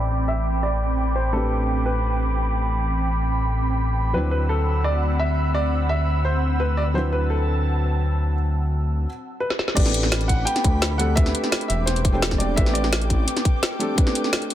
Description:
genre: liquid drum and bass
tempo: 171 BPM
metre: 4/4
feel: straight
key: A dorian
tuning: A4 = 440 Hz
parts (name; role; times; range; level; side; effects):
- warm baby grand piano; melody; 0.0-13.2 s; A4 to G5; -28 LUFS; right 1 dB; digital delay
- felt-muted upright piano; accompaniment; 0.0-14.5 s; F#3 to D5; -30 LUFS; equal; ping-pong delay
- airy breathy pad; sustained chords; 0.0-14.5 s; C4 to E6; -28 LUFS; right 1 dB; chorus, sidechain pumping
- dark detuned saw bass; bass; 0.0-13.3 s; E1 to D2; -22 LUFS; equal; none
- drum and bass drum kit; drums; 9.5-14.5 s; crash cymbal, hi-hat, snare drum; -24 LUFS; equal; low-pass filter on snare, low-pass filter on hats, low-pass filter on cymbals, low-pass filter on room
- electronic kick drum; drums; 9.8-14.0 s; none; -20 LUFS; equal; none
room: little or no reverb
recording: dense, heavily limited modern master, low-pass filter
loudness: -19 LUFS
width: side -12 dB against mid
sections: 0.0-9.8 A section; 9.8-14.5 B section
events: filter sweep 0.0-9.8; break 9.1-9.8; drum fill 9.5; drop 9.8-14.5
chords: 0.0 Am11; 4.2 D13; 9.8 Am11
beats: 0.29 0.65 1.00 | 1.35 1.70 2.05 2.40 | 2.75 3.10 3.45 3.80 | 4.15 4.50 4.86 5.21 | 5.56 5.91 6.26 6.61 | 6.96 7.31 7.66 8.01 | 8.36 8.71 9.07 9.42 | 9.77 10.12 10.47 10.82 | 11.17 11.52 11.87 12.22 | 12.57 12.93 13.28 13.63 | 13.98 14.33

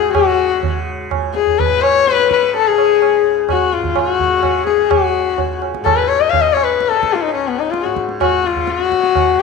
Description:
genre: indian classical, Hindustani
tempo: 127 BPM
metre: 5/4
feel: straight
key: C# major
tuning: A4 = 440 Hz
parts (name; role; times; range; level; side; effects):
- dark sarangi; melody; 0.0-9.4 s; B3 to E#5; -14 LUFS; left 10 dB; slapback echo
- tanpura; drone; 0.0-9.4 s; C#2 to C#3; -28 LUFS; right 3 dB; none
- tabla; percussion; 0.1-9.4 s; none; -21 LUFS; right 9 dB; none
room: moderate spring reverb, RT60 1.7 s, small room ambience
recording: 1960s-style stereo with parts hard left and right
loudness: -13 LUFS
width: side -4 dB against mid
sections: 0.0-9.4 A section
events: none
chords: none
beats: | 0.15 0.63 1.11 1.58 2.06 | 2.54 3.01 3.49 3.96 4.43 | 4.91 5.38 5.85 6.33 6.80 | 7.27 7.74 8.21 8.68 9.14

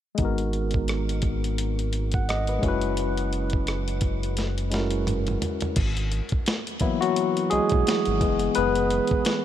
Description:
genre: R&B, neo-soul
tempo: 86 BPM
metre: 4/4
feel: swing 58% on 16ths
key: G# minor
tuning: A4 = 440 Hz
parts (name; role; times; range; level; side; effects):
- barky tine electric piano; accompaniment; 0.1-9.4 s; E3 to F#5; -25 LUFS; moving between left 6 dB and right 4 dB; overdrive, auto-pan
- round analog bass; bass; 0.2-9.2 s; F#1 to B1; -27 LUFS; equal; none
- dusty soul sampler-style drum kit; drums; 0.2-9.4 s; crash cymbal, finger snaps, hi-hat, kick drum, rim click, snare drum, toms; -28 LUFS; equal; none
room: moderate huge ambient reverb, RT60 8.4 s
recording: dreamy mix soaked in reverb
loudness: -22 LUFS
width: side -11 dB against mid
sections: 0.2-5.8 A section; 5.8-9.4 B section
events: drum fill 4.4-5.8; tine electric piano solo 5.8-9.4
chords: 0.2 G#m9; 2.6 F#9sus4; 5.8 G#m9; 8.2 F#9sus4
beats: | 0.19 0.88 1.58 2.28 | 2.98 3.67 4.37 5.07 | 5.77 6.47 7.16 7.86 | 8.56 9.26

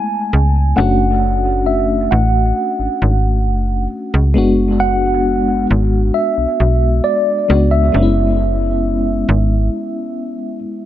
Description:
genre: contemporary R&B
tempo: 67 BPM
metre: 4/4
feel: straight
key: unclear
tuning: A4 = 441 Hz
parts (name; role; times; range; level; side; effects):
- mellow tine electric piano; melody; 0.0-10.6 s; D5 to G#5; -19 LUFS; right 1 dB; medium stereo tremolo, dub echo
- FM electric piano with tremolo; accompaniment; 0.0-10.9 s; G#3 to F#4; -18 LUFS; left 2 dB; dub echo
- slap-like FM bass; bass; 0.3-9.7 s; F#1 to C#2; -15 LUFS; equal; none
room: light reverb, digital ambience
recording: echo-heavy mix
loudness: -13 LUFS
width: side -12 dB against mid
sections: 0.0-10.9 A section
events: break 9.7-10.9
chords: 0.0 F#m11 (rootless); 0.8 Dmaj7#11/F#; 4.4 G#m7b5/F#; 7.9 C#m7/F#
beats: | 0.78 1.67 2.57 3.46 | 4.36 5.26 6.15 7.05 | 7.94 8.84 9.73 10.63

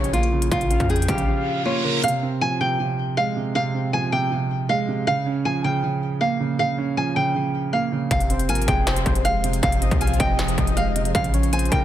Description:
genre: hip hop, trap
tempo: 158 BPM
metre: 4/4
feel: half-time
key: F minor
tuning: A4 = 440 Hz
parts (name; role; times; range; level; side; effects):
- nylon-string guitar; melody; 0.0-11.8 s; F4 to Ab5; -24 LUFS; equal; low-pass filter, ping-pong delay
- soft octave-layered synth lead; second line; 0.0-2.0, 8.3-11.8 s; Ab4 to G5; -30 LUFS; left 5 dB; chorus, ping-pong delay
- dark concert grand piano; accompaniment; 0.0-11.8 s; C3 to Db4; -24 LUFS; right 4 dB; low-pass filter
- clean 808-style bass; bass; 0.0-1.3, 8.1-11.8 s; F1 to F2; -24 LUFS; left 1 dB; none
- industrial drum kit; drums; 0.0-2.1, 8.1-11.8 s; hi-hat, kick drum, snare drum; -23 LUFS; left 1 dB; distortion
- reverse cymbal; sound effects; 1.4-2.0 s; none; -27 LUFS; right 4 dB; none
- ethereal airy pad; sustained chords; 9.1-11.8 s; F3 to C5; -32 LUFS; left 1 dB; ensemble chorus, built-in reverb, tremolo
room: light reverb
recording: dense, heavily limited modern master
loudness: -19 LUFS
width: side -11 dB against mid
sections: 0.0-2.0 A section; 2.0-11.8 B section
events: silent gap 1.3-2.0; reverse cymbal 1.4-2.0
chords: 0.0 Bbm; 2.0 Fm; 5.1 Bbm; 8.1 Fm; 11.1 Bbm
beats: 0.14 | 0.52 0.90 1.27 1.65 | 2.03 2.41 2.79 3.17 | 3.55 3.93 4.31 4.69 | 5.07 5.45 5.83 6.21 | 6.59 6.97 7.35 7.73 | 8.11 8.49 8.87 9.25 | 9.63 10.01 10.39 10.77 | 11.15 11.53

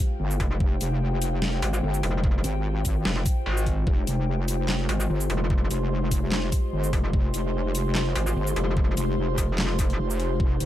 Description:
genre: heavy wobble dubstep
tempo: 147 BPM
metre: 4/4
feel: swing 55% on 16ths, half-time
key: F minor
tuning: A4 = 440 Hz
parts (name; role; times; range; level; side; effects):
- evolving wavetable pad; sustained chords; 0.0-10.7 s; Ab3 to F5; -35 LUFS; left 2 dB; chorus, built-in reverb, sidechain pumping
- airy breathy pad; texture; 0.0-10.7 s; F4 to C6; -33 LUFS; left 1 dB; chorus, sidechain pumping
- wobble bass; bass; 0.2-10.7 s; F1 to Ab1; -26 LUFS; equal; chorus, overdrive
- dubstep drum kit; drums; 0.3-10.7 s; handclaps, hi-hat, shaker, snare drum; -30 LUFS; equal; overdrive
- metallic wobble bass; bass; 0.4-10.0 s; F1 to Ab1; -26 LUFS; equal; chorus, overdrive
- electronic kick drum; drums; 0.4-10.5 s; none; -24 LUFS; equal; overdrive
room: little or no reverb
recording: dark, warm production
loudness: -23 LUFS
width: side -13 dB against mid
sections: 0.0-10.7 A section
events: kick drops out 10.0-10.4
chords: 0.0 Fmadd9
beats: 0.20 | 0.60 1.01 1.42 1.83 | 2.24 2.65 3.05 3.46 | 3.87 4.28 4.69 5.09 | 5.50 5.91 6.32 6.73 | 7.13 7.54 7.95 8.36 | 8.77 9.18 9.58 9.99 | 10.40

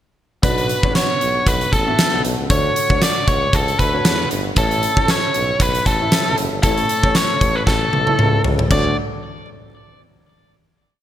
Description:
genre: 1980s-style pop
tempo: 116 BPM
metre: 4/4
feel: swing 55% on 16ths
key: D major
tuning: A4 = 440 Hz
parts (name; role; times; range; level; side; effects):
- biting lead guitar; melody; 0.4-9.0 s; A4 to D5; -19 LUFS; equal; overdrive
- clear baby grand piano; accompaniment; 0.4-8.9 s; D2 to E5; -25 LUFS; left 2 dB; wide subtle chorus
- warm tuba; bass; 0.4-8.9 s; F#1 to E2; -24 LUFS; equal; none
- huge arena drum kit; drums; 0.4-8.8 s; crash cymbal, hi-hat, kick drum, snare drum, toms; -18 LUFS; equal; gated reverb
room: moderate plate reverb, RT60 1.7 s, studio reverb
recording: bright 1980s-style digital production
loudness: -15 LUFS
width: side -11 dB against mid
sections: 0.4-8.7 verse; 8.7-10.8 final chord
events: drum fill 7.7-8.7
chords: 0.4 Bm; 2.5 Dmaj7; 4.6 A; 8.7 Dmaj7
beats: | 0.43 0.95 1.47 1.98 | 2.50 3.02 3.54 4.05 | 4.57 5.09 5.60 6.12 | 6.64 7.16 7.67 8.19 | 8.71

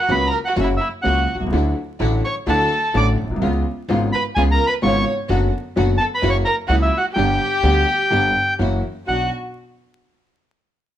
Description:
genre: tango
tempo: 127 BPM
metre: 4/4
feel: rubato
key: B minor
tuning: A4 = 438 Hz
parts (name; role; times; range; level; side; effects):
- bandoneon; melody; 0.0-9.3 s; E5 to D6; -20 LUFS; equal; none
- warm chamber violin section; second line; 0.0-9.3 s; E4 to D5; -25 LUFS; equal; none
- warm concert grand piano; accompaniment; 0.1-9.3 s; G1 to G4; -22 LUFS; left 2 dB; none
- rich chamber string section; stabs; 0.1-9.3 s; A#3 to G4; -29 LUFS; right 3 dB; none
- upright bass; bass; 0.1-9.3 s; F#1 to D2; -21 LUFS; equal; none
room: light reverb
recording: vinyl crackle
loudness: -16 LUFS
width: side -11 dB against mid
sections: 0.0-9.1 A section; 9.1-11.0 B section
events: none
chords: 0.0 F#; 1.5 Dadd9; 3.4 C#7; 5.3 Bm/F#; 6.2 F#7; 7.2 G; 8.6 F#7; 9.1 Bm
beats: 0.08 0.56 1.04 | 1.52 2.00 2.48 2.95 | 3.42 3.90 4.37 4.83 | 5.30 5.76 6.23 6.69 | 7.16 7.63 8.11 8.59 | 9.07

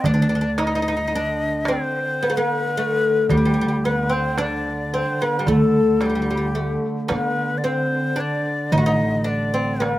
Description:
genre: Turkish makam ensemble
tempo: 111 BPM (eighths)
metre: 10/8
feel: straight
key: D makam hicaz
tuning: A4 = 439 Hz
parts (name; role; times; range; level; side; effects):
- oud; melody; 0.0-10.0 s; G3 to F#4; -23 LUFS; left 1 dB; none
- breathy bright ney; second line; 0.0-10.0 s; G4 to Eb5; -26 LUFS; left 2 dB; slapback echo
- upright bass; bass; 0.0-10.0 s; A1 to D3; -23 LUFS; equal; none
- mellow duduk; drone; 0.0-10.0 s; D3; -30 LUFS; right 1 dB; none
- darbuka; percussion; 0.0-10.0 s; none; -24 LUFS; right 2 dB; none
room: little or no reverb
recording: recorded outdoors, with no room sound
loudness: -18 LUFS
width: side -15 dB against mid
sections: 0.0-10.0 A section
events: none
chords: none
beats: | 0.04 0.59 1.13 1.67 2.21 2.76 3.30 3.84 4.38 4.93 | 5.47 6.01 6.56 7.10 7.64 8.18 8.73 9.27 9.81

